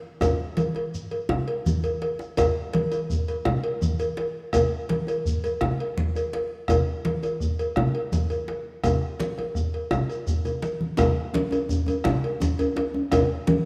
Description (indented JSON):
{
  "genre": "west african traditional, West African drum ensemble",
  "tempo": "112 BPM (dotted quarters)",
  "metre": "12/8",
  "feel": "straight",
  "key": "none",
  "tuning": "none",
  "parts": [
    { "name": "bombo", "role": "percussion", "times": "0.2-13.3 s", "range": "none", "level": "-30 LUFS", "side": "equal", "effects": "none" },
    { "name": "congas", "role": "percussion", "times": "0.2-13.6 s", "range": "none", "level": "-30 LUFS", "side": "equal", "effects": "none" },
    { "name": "cowbell", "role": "percussion", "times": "0.2-13.6 s", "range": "none", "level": "-30 LUFS", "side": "equal", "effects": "none" },
    { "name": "djembe", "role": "percussion", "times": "0.2-13.6 s", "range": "none", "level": "-35 LUFS", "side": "equal", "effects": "none" },
    { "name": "shekere", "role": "percussion", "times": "0.2-13.3 s", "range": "none", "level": "-39 LUFS", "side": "equal", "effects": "none" },
    { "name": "djembe", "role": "percussion", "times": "11.0-13.6 s", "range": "none", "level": "-30 LUFS", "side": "equal", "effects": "none" }
  ],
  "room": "wet lush hall reverb, RT60 2.1 s",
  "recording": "rough home demo mix",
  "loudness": "-25 LUFS",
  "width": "mono",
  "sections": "0.0-11.0 A section; 11.0-13.7 B section",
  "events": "drum fill 1.8-2.4, 10.4-11.0",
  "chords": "none"
}